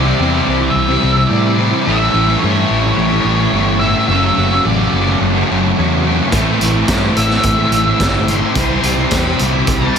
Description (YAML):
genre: rock, shoegaze and dream pop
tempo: 108 BPM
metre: 4/4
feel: straight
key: unclear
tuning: A4 = 440 Hz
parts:
  - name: octave-fuzz lead guitar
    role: melody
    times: 0.0-10.0 s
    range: C#5 to C6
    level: -19 LUFS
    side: equal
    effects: distortion, analog delay
  - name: crunchy overdriven guitar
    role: riff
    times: 0.0-10.0 s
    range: A2 to F#4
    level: -19 LUFS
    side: right 9 dB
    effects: reverse reverb
  - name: distorted electric guitar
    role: riff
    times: 0.0-10.0 s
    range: F#2 to C4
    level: -20 LUFS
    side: equal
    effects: overdrive
  - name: thick fuzz guitar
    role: riff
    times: 0.0-10.0 s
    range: F#2 to C4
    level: -18 LUFS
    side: left 9 dB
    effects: distortion, ensemble chorus
  - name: fingered electric bass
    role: bass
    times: 0.0-10.0 s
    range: F#1 to A2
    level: -18 LUFS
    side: equal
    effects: none
  - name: raw garage drum kit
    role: drums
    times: 6.3-10.0 s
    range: hi-hat, kick drum, snare drum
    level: -19 LUFS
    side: equal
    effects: none
room: moderate plate reverb, RT60 1.4 s, small room ambience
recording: dreamy mix soaked in reverb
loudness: -12 LUFS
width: side -7 dB against mid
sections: 0.0-10.0 A section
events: none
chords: 0.0 C; 1.9 A7; 4.1 F#m7; 6.3 Am; 8.6 C